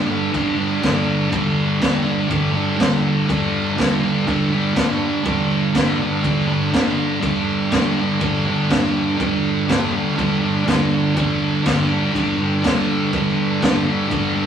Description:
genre	garage rock duo or trio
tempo	122 BPM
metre	4/4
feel	straight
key	unclear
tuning	A4 = 440 Hz
part	thick fuzz guitar	riff	0.0-14.5 s	G2 to G3	-18 LUFS	right 1 dB	distortion
part	raw garage drum kit	drums	0.3-14.2 s	crash cymbal, kick drum, snare drum	-22 LUFS	equal	none
room	moderate stone room reverb, RT60 1.0 s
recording	rough rehearsal-room recording, tube saturation, small room ambience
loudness	-16 LUFS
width	side -8 dB against mid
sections	0.0-14.5 A section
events	none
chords	0.0 G5

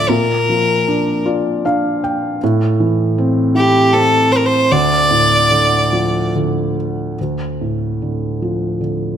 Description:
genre	celtic folk, Celtic slow air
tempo	68-80 BPM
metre	3/4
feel	rubato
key	D minor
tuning	A4 = 440 Hz
part	clear fiddle	melody	0.0-6.3 s	G4 to D5	-14 LUFS	equal	none
part	felt-muted upright piano	accompaniment	0.0-9.2 s	D2 to G5	-16 LUFS	equal	none
room	moderate recital hall reverb, RT60 1.8 s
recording	none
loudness	-13 LUFS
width	side -9 dB against mid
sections	0.0-7.2 A section; 7.2-9.2 A section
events	felt piano fill 0.9-2.4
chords	0.1 Bb; 2.4 Am; 4.7 Dm

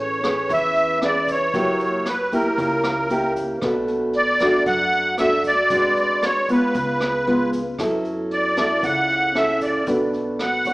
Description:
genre	bossa nova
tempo	115 BPM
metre	4/4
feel	straight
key	unclear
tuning	A4 = 438 Hz
part	musette accordion	melody	0.0-10.7 s	A#4 to F#5	-20 LUFS	equal	none
part	nylon-string guitar	accompaniment	0.0-10.7 s	B2 to C#5	-22 LUFS	equal	none
part	upright bass	bass	0.0-10.7 s	F#1 to F#2	-37 LUFS	equal	none
part	vintage brush drum kit	drums	0.2-10.7 s	hi-hat, kick drum, rim click	-32 LUFS	equal	none
part	tube shaker	percussion	0.2-10.7 s	none	-48 LUFS	right 1 dB	none
room	moderate recital hall reverb, RT60 1.4 s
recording	recorded in a church or concert hall, small speaker sound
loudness	-18 LUFS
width	side -21 dB against mid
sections	0.0-10.7 A section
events	none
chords	0.0 Amaj9; 1.5 F#7b9; 3.6 Bm7; 5.7 G#m7b5; 6.7 C#7; 7.8 F#m7; 9.9 Bm7

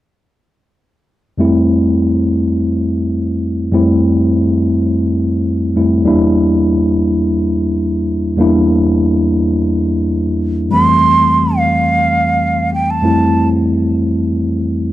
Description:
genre	soul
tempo	free time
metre	none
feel	none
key	F major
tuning	A4 = 441 Hz
part	mellow tine electric piano	accompaniment	1.4-14.9 s	E2 to E4	-12 LUFS	equal	fast stereo tremolo
part	breathy hollow jazz flute	melody	10.7-13.5 s	F5 to C6	-13 LUFS	right 3 dB	none
room	small room ambience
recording	dry, close 1970s-style studio recording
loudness	-12 LUFS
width	side -14 dB against mid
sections	1.4-10.7 A section; 10.7-14.9 B section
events	none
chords	1.4 Fmaj7; 6.1 Em7b5; 10.7 Fmaj7

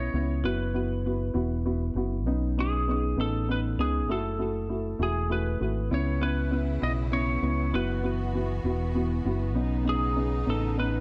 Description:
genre	pop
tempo	66 BPM (dotted quarters)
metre	6/8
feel	straight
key	unclear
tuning	A4 = 440 Hz
part	lightly driven lead guitar	melody	0.0-11.0 s	G#4 to D#5	-35 LUFS	equal	tape echo
part	dark upright piano	accompaniment	0.0-11.0 s	A3 to F#4	-32 LUFS	equal	none
part	fingered electric bass	bass	0.0-11.0 s	E1 to C#2	-31 LUFS	equal	none
part	bright studio string section	sustained chords	5.9-11.0 s	C#3 to F#4	-40 LUFS	equal	none
room	moderate spring reverb, RT60 1.6 s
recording	echo-heavy mix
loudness	-28 LUFS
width	mono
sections	0.0-11.0 A section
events	none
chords	0.4 F#7sus4; 2.3 Badd9; 4.1 F#m7; 5.9 C#m7; 7.7 F#7sus4; 9.6 Badd9

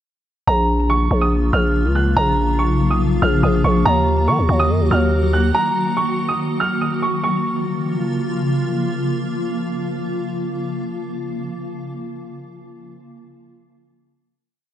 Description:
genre	hip hop, drill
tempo	142 BPM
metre	4/4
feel	half-time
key	Bb minor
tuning	A4 = 439 Hz
part	dark baby grand piano	melody	0.5-8.5 s	Bb5 to Gb6	-20 LUFS	right 2 dB	low-pass filter, tape echo
part	granular cloud pad	sustained chords	0.9-11.4 s	Db3 to Gb4	-22 LUFS	left 1 dB	built-in reverb
part	growling 808-style bass	bass	0.5-5.5 s	Bb1 to Eb3	-16 LUFS	equal	none
room	light reverb, studio reverb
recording	none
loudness	-16 LUFS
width	side -11 dB against mid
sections	0.5-7.2 hook; 7.2-10.6 final chord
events	none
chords	0.5 Bbm; 3.9 Ebm; 7.2 Bbm

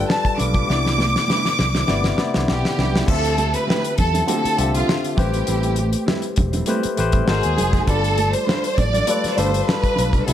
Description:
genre	lush 1970s-style soul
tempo	100 BPM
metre	4/4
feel	swing 54% on 16ths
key	D dorian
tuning	A4 = 439 Hz
part	warm studio violin section	melody	0.0-10.3 s	F4 to D6	-22 LUFS	right 1 dB	none
part	barky tine electric piano	accompaniment	0.0-10.3 s	C3 to E5	-24 LUFS	left 5 dB	phaser
part	mellow electric guitar	riff	0.0-10.3 s	F3 to D5	-30 LUFS	right 4 dB	warbly pitch drift
part	fingered electric bass	bass	0.0-10.3 s	E1 to E2	-22 LUFS	equal	none
part	damped 70s drum kit	drums	0.1-10.3 s	crash cymbal, hi-hat, kick drum, snare drum	-22 LUFS	equal	none
part	congas	percussion	0.4-10.3 s	none	-28 LUFS	right 3 dB	none
room	studio ambience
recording	none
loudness	-17 LUFS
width	side -10 dB against mid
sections	0.0-3.1 A section; 3.1-10.3 A section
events	drum fill 0.7-3.1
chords	0.0 G9; 0.7 Cmaj9; 3.1 Dm11; 5.2 Am9; 7.3 G#9; 7.9 G9

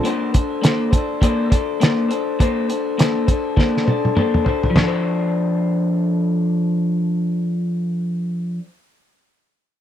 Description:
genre	indie pop, bedroom pop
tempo	102 BPM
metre	4/4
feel	swing 60% on 16ths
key	F major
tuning	A4 = 438 Hz
part	electric guitar through a small old amp	accompaniment	0.0-8.7 s	F3 to C5	-19 LUFS	left 2 dB	lush chorus, vibrato effect
part	cloth-damped thuddy drum kit	drums	0.0-4.9 s	china cymbal, hi-hat, kick drum, snare drum, toms	-17 LUFS	equal	none
room	light reverb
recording	dry, close 1970s-style studio recording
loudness	-17 LUFS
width	side -10 dB against mid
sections	0.0-4.8 A section; 4.8-7.1 B section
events	drum fill 3.6-4.8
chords	0.0 Bbmaj9; 4.8 F6

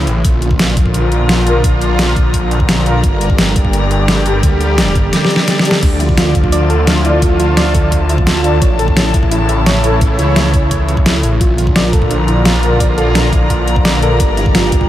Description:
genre	dark technical drum and bass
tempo	172 BPM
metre	4/4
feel	straight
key	unclear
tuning	A4 = 444 Hz
part	sweeping resonant pad	sustained chords	0.0-14.9 s	C#3 to G4	-18 LUFS	right 1 dB	chorus, sidechain pumping
part	snarling distorted saw bass	bass	0.0-14.9 s	G1 to D2	-15 LUFS	equal	distortion, tube saturation, sidechain pumping
part	dark studio string section	texture	0.0-14.9 s	E4 to Bb5	-20 LUFS	left 2 dB	sidechain pumping
part	dubstep drum kit	drums	0.1-14.8 s	crash cymbal, hi-hat, snare drum	-16 LUFS	equal	overdrive, small room ambience
part	electronic kick drum	drums	0.2-14.9 s	none	-14 LUFS	equal	small room ambience
part	mellow brass ensemble	stabs	1.5-10.0, 12.6-14.2 s	G3 to D5	-24 LUFS	left 2 dB	none
part	soft round pluck	arpeggios	5.8-14.8 s	C#4 to D5	-20 LUFS	right 2 dB	chorus, sidechain pumping, tape echo
room	moderate cathedral reverb, RT60 4.9 s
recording	dreamy mix soaked in reverb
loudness	-10 LUFS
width	side -13 dB against mid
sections	0.0-14.9 A section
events	drum fill 5.1-5.8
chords	0.2 Bb; 3.0 Gm; 5.8 Dm; 8.6 A; 11.4 Bb; 14.2 Gm

